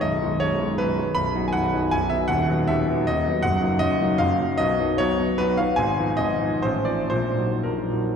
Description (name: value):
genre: classical, romantic triple-time dance for piano with dotted rhythms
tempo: 107-170 BPM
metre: 3/4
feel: rubato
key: Eb minor from 3.4 s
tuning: A4 = 441 Hz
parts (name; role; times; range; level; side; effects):
- clear grand piano; solo; 0.0-8.2 s; B0 to B5; -20 LUFS; equal; none
room: wet church reverb, RT60 3.1 s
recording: dark, warm production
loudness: -20 LUFS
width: side -7 dB against mid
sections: 0.0-8.2 A section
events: none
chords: 0.0 G#m/B; 1.2 B; 2.3 B/D#; 3.4 Ebm/Gb; 4.6 B; 5.8 Fm7b5/Ab; 6.6 F7/A; 7.1 Ebm/Bb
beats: | 0.03 0.42 0.80 | 1.17 1.55 1.94 | 2.31 2.69 3.08 | 3.44 3.81 4.21 | 4.60 5.00 5.40 | 5.78 6.19 6.63 | 7.10 7.63 8.15